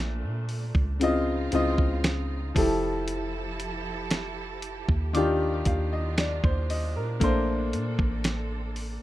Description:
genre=contemporary R&B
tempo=58 BPM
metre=4/4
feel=straight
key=Bb major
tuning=A4 = 439 Hz
part: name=clear grand piano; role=accompaniment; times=0.0-9.0 s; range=Bb2 to F5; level=-28 LUFS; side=left 2 dB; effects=none
part: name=rich studio string section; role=sustained chords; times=0.0-9.0 s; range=Bb2 to A4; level=-38 LUFS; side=right 4 dB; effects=sidechain pumping
part: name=soft 808-style bass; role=bass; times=0.0-9.0 s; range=F1 to Bb2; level=-30 LUFS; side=right 1 dB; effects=none
part: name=dusty soul sampler-style drum kit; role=drums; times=0.5-9.0 s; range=hi-hat, kick drum, snare drum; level=-27 LUFS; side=right 1 dB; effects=none
part: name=mallet-like synth pluck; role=texture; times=5.1-7.7 s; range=D6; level=-38 LUFS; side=right 5 dB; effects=none
room=little or no reverb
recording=rough home demo mix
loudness=-24 LUFS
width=side -15 dB against mid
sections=0.0-9.0 A section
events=none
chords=0.0 Bbmaj9; 1.0 Dbmaj9; 2.6 Fmaj9; 5.1 Ebmaj9; 7.2 Bbmaj9

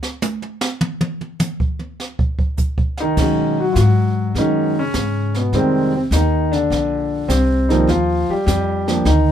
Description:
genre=jazz piano trio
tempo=102 BPM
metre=4/4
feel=swing 69% on 8ths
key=unclear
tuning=A4 = 441 Hz
part: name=jazz brush drum kit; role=drums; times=0.0-9.3 s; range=brushed snare drum, crash cymbal, hi-hat, kick drum, snare drum, toms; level=-21 LUFS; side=right 1 dB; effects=none
part: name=warm concert grand piano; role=melody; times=3.0-9.3 s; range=B2 to G4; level=-17 LUFS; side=equal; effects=none
part: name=upright bass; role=bass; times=3.2-9.3 s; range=A#1 to B2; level=-19 LUFS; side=left 1 dB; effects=none
room=little or no reverb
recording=minimal, uncompressed stereo recording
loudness=-16 LUFS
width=side -10 dB against mid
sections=0.0-3.2 A section; 3.2-9.3 B section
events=grand piano solo 0.0-3.2; drum solo 0.0-3.2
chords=0.0 N.C.; 3.2 B69; 5.5 Fm7; 6.7 A#add9; 7.9 D#maj9

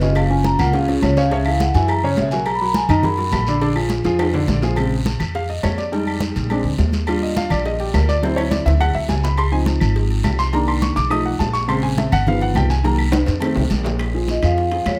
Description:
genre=Afro-Cuban jazz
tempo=208 BPM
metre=4/4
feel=straight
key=unclear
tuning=A4 = 441 Hz
part: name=vibraphone with soft mallets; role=melody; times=0.0-3.6, 14.3-15.0 s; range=Ab4 to B5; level=-23 LUFS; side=equal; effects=none
part: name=warm concert grand piano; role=accompaniment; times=0.0-15.0 s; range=Bb2 to D#6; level=-23 LUFS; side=equal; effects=none
part: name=upright bass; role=bass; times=0.0-15.0 s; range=Gb1 to Gb2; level=-22 LUFS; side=equal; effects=none
part: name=cowbell and bongos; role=percussion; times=0.0-15.0 s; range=none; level=-34 LUFS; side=equal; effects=none
part: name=guiro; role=percussion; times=0.0-15.0 s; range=none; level=-37 LUFS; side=equal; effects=none
part: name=timbales and agogo bells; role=percussion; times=0.0-15.0 s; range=none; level=-31 LUFS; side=equal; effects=none
part: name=claves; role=percussion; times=0.2-15.0 s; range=none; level=-36 LUFS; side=equal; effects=none
part: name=congas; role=percussion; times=0.2-15.0 s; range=none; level=-28 LUFS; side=equal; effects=none
room=light reverb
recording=close, detailed microphones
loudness=-19 LUFS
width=mono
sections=0.0-4.8 A section; 4.8-14.0 A section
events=drum fill 0.0, 4.2-4.8, 8.2-9.4, 13.1-14.0; vibraphone solo 0.0-4.8; grand piano solo 4.8-14.0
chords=0.2 Gbmaj7; 1.3 Dbm; 1.9 Gb7; 2.5 Bmaj7; 3.6 Bb7; 4.8 Bbm7; 5.9 Fm7; 6.5 Bb7; 7.1 Ebmaj7; 8.2 D9; 9.4 Dbmaj7; 10.5 Cm7; 11.1 B7#11; 11.7 Bbm7; 12.3 Gaug7; 12.8 Cm7b5; 13.4 F7; 14.0 Bb7(no3)

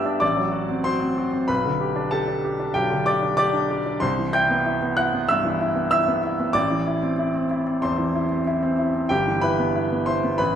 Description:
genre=classical, virtuoso piano study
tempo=95 BPM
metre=4/4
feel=rubato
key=E minor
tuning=A4 = 440 Hz
part: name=clear baby grand piano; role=solo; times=0.0-10.6 s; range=G1 to G6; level=-20 LUFS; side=equal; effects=none
room=wet recital hall reverb, RT60 1.6 s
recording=none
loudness=-20 LUFS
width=side -9 dB against mid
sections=0.0-10.6 A section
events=none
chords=0.2 F#dim/A; 1.5 G/B; 4.0 Cmaj7; 6.6 Am; 9.1 Em/G

